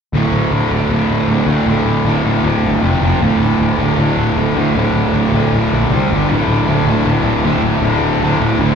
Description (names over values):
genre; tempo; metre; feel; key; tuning
rock; 156 BPM; 4/4; straight; D minor; A4 = 441 Hz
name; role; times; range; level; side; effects
fuzz guitar; riff; 0.1-8.8 s; D2 to C4; -14 LUFS; equal; distortion
fuzz picked electric bass; bass; 0.1-8.7 s; D1 to D2; -18 LUFS; equal; overdrive
room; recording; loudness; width
light reverb, digital ambience; live gig heard through the venue's PA, recital hall reverb; -12 LUFS; side -6 dB against mid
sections
0.1-6.3 A section; 6.3-8.8 B section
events
none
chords
0.1 D5; 2.8 F5; 3.2 D5; 5.9 C5; 6.1 G5; 6.3 D5